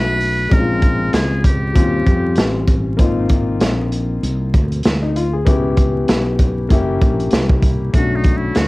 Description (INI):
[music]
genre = hip hop, jazz-hop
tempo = 97 BPM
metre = 4/4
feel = swing 57% on 16ths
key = unclear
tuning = A4 = 435 Hz
[part]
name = trumpet with metal mute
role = melody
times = 0.0-2.6, 8.0-8.7 s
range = D#4 to B4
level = -22 LUFS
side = right 1 dB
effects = cassette tape
[part]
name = warm concert grand piano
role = accompaniment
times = 0.0-8.7 s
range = F#3 to G#4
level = -20 LUFS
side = left 3 dB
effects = cassette tape
[part]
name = mellow fretless electric bass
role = bass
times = 0.0-8.7 s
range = F#1 to E#2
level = -20 LUFS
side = equal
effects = none
[part]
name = crunchy breakbeat drum kit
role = drums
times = 0.2-8.7 s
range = hi-hat, kick drum, snare drum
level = -16 LUFS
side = equal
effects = cassette tape
[sound]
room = light reverb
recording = home recording on cassette, vinyl crackle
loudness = -14 LUFS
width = side -21 dB against mid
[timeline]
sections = 0.0-7.9 A section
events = none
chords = 0.0 Dmaj7 (rootless); 0.5 A#m9; 1.8 D#13; 3.0 G#69; 5.5 C#m7b5; 6.7 F#7b9; 7.9 Bm9